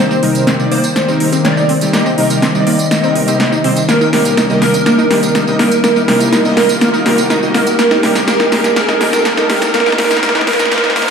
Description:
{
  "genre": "progressive house",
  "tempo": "123 BPM",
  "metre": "4/4",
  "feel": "straight",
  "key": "unclear",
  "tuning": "A4 = 442 Hz",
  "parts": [
    { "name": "plucky unison lead", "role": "melody", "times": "0.0-11.1 s", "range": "Bb4 to Eb5", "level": "-16 LUFS", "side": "right 2 dB", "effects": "phaser, ping-pong delay" },
    { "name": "evolving wavetable pad", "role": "sustained chords", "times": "0.0-11.1 s", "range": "C2 to G4", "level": "-21 LUFS", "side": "left 3 dB", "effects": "chorus, built-in reverb" },
    { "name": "wide unison pluck", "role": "arpeggios", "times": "0.0-11.1 s", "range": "Bb3 to G4", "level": "-18 LUFS", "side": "equal", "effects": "ping-pong delay" },
    { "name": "soft supersaw", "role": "stabs", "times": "0.0-11.1 s", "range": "C3 to Eb5", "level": "-17 LUFS", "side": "right 1 dB", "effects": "ping-pong delay" },
    { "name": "riser and noise sweep", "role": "sound effects", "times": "0.9-11.1 s", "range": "none", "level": "-23 LUFS", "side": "equal", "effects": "none" },
    { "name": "big-room dance drum kit", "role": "drums", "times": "0.1-11.1 s", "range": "hi-hat, snare drum, tambourine", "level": "-16 LUFS", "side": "equal", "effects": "overdrive" }
  ],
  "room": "wet recital hall reverb, RT60 1.8 s",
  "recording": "played on a big sound system in a bare room, large studio reverb, high-pass filter",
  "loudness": "-10 LUFS",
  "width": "side -6 dB against mid",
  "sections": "0.0-11.1 A section",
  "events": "build-up 0.0-11.1; drum fill 0.0-11.1; filter sweep on ambient pad 0.0-11.1; filter sweep 0.0-11.1; riser 0.9-11.1; noise sweep 9.7-11.1",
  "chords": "0.0 Cm7; 3.9 Eb/C"
}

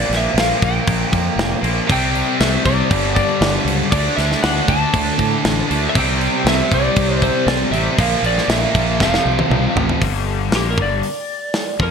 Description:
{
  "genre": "hard rock",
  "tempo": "118 BPM",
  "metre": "4/4",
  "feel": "straight",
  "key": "unclear",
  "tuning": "A4 = 437 Hz",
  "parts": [
    { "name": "lightly driven lead guitar", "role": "melody", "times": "0.0-11.9 s", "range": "G4 to A5", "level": "-22 LUFS", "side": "equal", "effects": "wide subtle chorus" },
    { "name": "cranked stack guitar", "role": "riff", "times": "0.0-11.9 s", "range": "F2 to F4", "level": "-23 LUFS", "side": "left 13 dB", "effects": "overdrive, analog chorus" },
    { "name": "overdriven electric guitar", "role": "riff", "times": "0.0-10.0 s", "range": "F2 to D4", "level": "-24 LUFS", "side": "right 10 dB", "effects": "none" },
    { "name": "fuzz fingered electric bass", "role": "bass", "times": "0.0-11.9 s", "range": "F1 to A2", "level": "-21 LUFS", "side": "equal", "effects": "overdrive" },
    { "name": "tight metal drum kit", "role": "drums", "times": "0.1-11.9 s", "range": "crash cymbal, hi-hat, kick drum, snare drum, toms", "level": "-20 LUFS", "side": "equal", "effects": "gated reverb" },
    { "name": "heavy high-gain guitar", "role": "riff", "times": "1.9-10.0 s", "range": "F2 to D4", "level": "-23 LUFS", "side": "right 1 dB", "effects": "distortion" }
  ],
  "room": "moderate plate reverb, RT60 1.6 s, small room ambience",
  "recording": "bright 1980s-style digital production",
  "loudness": "-15 LUFS",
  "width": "side -6 dB against mid",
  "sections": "0.0-10.0 A section; 10.0-11.9 B section",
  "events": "drum fill 9.0-10.0; lead electric guitar solo 10.0-11.9",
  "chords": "0.0 Bb5; 1.9 C5; 2.9 G5; 3.9 D5; 6.0 C5; 8.0 Bb5; 9.0 F; 10.0 G5"
}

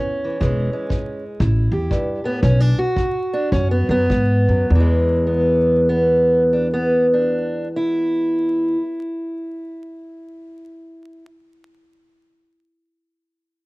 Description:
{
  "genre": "acoustic country blues, solo or duo",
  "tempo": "96-123 BPM",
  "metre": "4/4",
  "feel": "swing 64% on 8ths",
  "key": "E mixolydian",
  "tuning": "A4 = 439 Hz",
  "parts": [
    { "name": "fingerpicked steel-string acoustic guitar", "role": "melody", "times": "0.0-11.2 s", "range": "E2 to G4", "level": "-19 LUFS", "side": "equal", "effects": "cassette tape" },
    { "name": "upright bass", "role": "bass", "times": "0.4-8.7 s", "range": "E1 to G#2", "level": "-19 LUFS", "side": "equal", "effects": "none" },
    { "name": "kick drum", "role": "drums", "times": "0.4-4.3 s", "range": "none", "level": "-24 LUFS", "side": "equal", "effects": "cassette tape" }
  ],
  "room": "small room ambience",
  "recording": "home recording on cassette, vinyl crackle",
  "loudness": "-16 LUFS",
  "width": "side -21 dB against mid",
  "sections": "0.0-4.7 A section; 4.7-9.7 B section",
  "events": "slowing down 0.4-4.7",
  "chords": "0.4 E; 1.4 A5; 2.4 B5; 4.7 E"
}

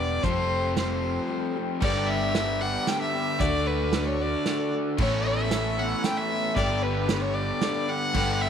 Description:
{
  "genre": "folk rock and heartland rock",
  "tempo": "114 BPM",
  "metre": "3/4",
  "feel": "straight",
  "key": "unclear",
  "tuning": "A4 = 440 Hz",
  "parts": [
    { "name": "clear fiddle", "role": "melody", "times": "0.0-8.5 s", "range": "B4 to G5", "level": "-28 LUFS", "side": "left 1 dB", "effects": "none" },
    { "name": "picked steel-string acoustic guitar", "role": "accompaniment", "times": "0.0-8.5 s", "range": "A2 to B4", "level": "-32 LUFS", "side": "left 9 dB", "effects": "none" },
    { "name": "overdriven electric guitar", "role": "riff", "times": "0.0-8.5 s", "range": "G2 to B4", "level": "-30 LUFS", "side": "right 1 dB", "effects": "none" },
    { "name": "hollow-body short-scale fingered electric bass", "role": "bass", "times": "0.0-8.5 s", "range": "E1 to D2", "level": "-30 LUFS", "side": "equal", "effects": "none" },
    { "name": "unplugged drum kit", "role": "drums", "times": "0.2-8.3 s", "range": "crash cymbal, hi-hat, kick drum, snare drum", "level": "-29 LUFS", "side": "right 3 dB", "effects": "none" },
    { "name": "mellow accordion", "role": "sustained chords", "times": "1.8-8.5 s", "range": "A3 to A4", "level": "-38 LUFS", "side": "right 2 dB", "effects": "none" }
  ],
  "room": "light reverb, studio ambience",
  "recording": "1960s-style stereo",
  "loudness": "-23 LUFS",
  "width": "side -8 dB against mid",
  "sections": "0.0-1.8 A section; 1.8-8.5 B section",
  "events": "break 1.3-1.8",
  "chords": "0.2 Fadd9; 1.8 Gadd9; 3.4 D; 5.0 Aadd9; 6.6 Gadd9"
}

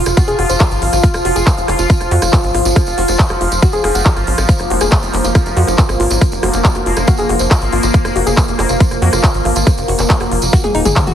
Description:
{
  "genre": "psychedelic trance",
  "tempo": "139 BPM",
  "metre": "4/4",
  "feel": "straight",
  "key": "F phrygian",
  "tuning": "A4 = 440 Hz",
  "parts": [
    { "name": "bubbling stepped-filter texture", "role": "sustained chords", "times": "0.0-11.1 s", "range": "F3 to F4", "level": "-18 LUFS", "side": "equal", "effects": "chorus, built-in reverb, sidechain pumping" },
    { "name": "tight sequencer bass", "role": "bass", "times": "0.0-11.1 s", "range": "Eb1 to F2", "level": "-18 LUFS", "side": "equal", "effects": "none" },
    { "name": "big-room dance drum kit", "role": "drums", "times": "0.1-11.1 s", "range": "handclaps, hi-hat, rim click, snare drum, toms", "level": "-20 LUFS", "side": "equal", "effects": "overdrive" },
    { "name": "tambourine", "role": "percussion", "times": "0.1-11.1 s", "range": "none", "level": "-24 LUFS", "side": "right 3 dB", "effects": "none" },
    { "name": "woody wave-folded pluck", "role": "riff", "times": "0.2-11.1 s", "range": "Eb4 to Gb5", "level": "-21 LUFS", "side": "moving between left 7 dB and right 5 dB", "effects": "chorus, auto-pan, cassette tape, sidechain pumping, dub echo" },
    { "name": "electronic kick drum", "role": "drums", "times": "0.2-11.0 s", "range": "none", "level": "-13 LUFS", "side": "equal", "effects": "overdrive" }
  ],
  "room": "light reverb, digital ambience",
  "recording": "heavily compressed radio sound, lossy compression artefacts",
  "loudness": "-11 LUFS",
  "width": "side -10 dB against mid",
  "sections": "0.0-11.1 A section",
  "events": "drum fill 10.5-11.1",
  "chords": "0.0 F5"
}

